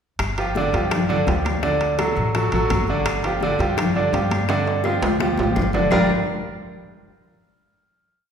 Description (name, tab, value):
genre	latin, salsa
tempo	168 BPM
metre	4/4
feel	straight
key	unclear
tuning	A4 = 441 Hz
part	upright bass	bass	0.2-6.1 s	G1 to G2	-25 LUFS	equal	none
part	bongos	percussion	0.2-6.0 s	none	-31 LUFS	left 5 dB	none
part	claves	percussion	0.2-6.0 s	none	-34 LUFS	left 5 dB	none
part	congas	percussion	0.2-6.0 s	none	-27 LUFS	left 3 dB	none
part	timbales	percussion	0.2-6.0 s	none	-28 LUFS	equal	none
part	clear concert grand piano	accompaniment	0.4-6.1 s	D3 to D5	-21 LUFS	right 2 dB	none
room	wet recital hall reverb, RT60 1.7 s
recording	recorded in a church or concert hall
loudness	-18 LUFS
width	side -7 dB against mid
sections	0.2-5.9 A section; 5.9-7.3 final chord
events	drum fill 4.5-5.9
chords	0.2 G5; 1.6 D; 3.1 G5; 5.9 Gm7